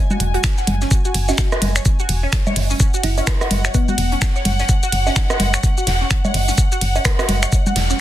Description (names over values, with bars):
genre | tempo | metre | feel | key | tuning
minimal techno | 127 BPM | 4/4 | swing 59% on 16ths | unclear | A4 = 440 Hz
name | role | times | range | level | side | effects
warm chamber string section | texture | 0.0-8.0 s | F#5 to G#5 | -26 LUFS | left 1 dB | sidechain pumping
resonant blip pluck | riff | 0.1-7.9 s | C#4 to F#5 | -27 LUFS | right 2 dB | phaser, analog chorus, cassette tape, sidechain pumping, tape echo
minimal click drum kit | drums | 0.1-8.0 s | finger snaps, hi-hat, ride cymbal, shaker | -23 LUFS | equal | soft clipping on snare
electronic congas, woodblock and rim click | percussion | 0.1-7.7 s | none | -24 LUFS | right 1 dB | none
woody FM bass | bass | 0.2-7.9 s | E1 to F#1 | -19 LUFS | equal | sidechain pumping
gated 80s drum kit | drums | 0.2-7.9 s | hi-hat, snare drum | -30 LUFS | right 3 dB | high-pass filter on hats, high-pass filter on snare, high-pass filter on room
electronic kick drum | drums | 0.4-7.6 s | none | -17 LUFS | equal | none
thumb-piano-like synth pluck | melody | 1.3-4.1 s | B3 to F#4 | -27 LUFS | left 2 dB | chorus, phaser, ping-pong delay
room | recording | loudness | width
little or no reverb | dense, heavily limited modern master | -15 LUFS | side -13 dB against mid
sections
0.0-8.0 A section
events
none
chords
0.0 F#5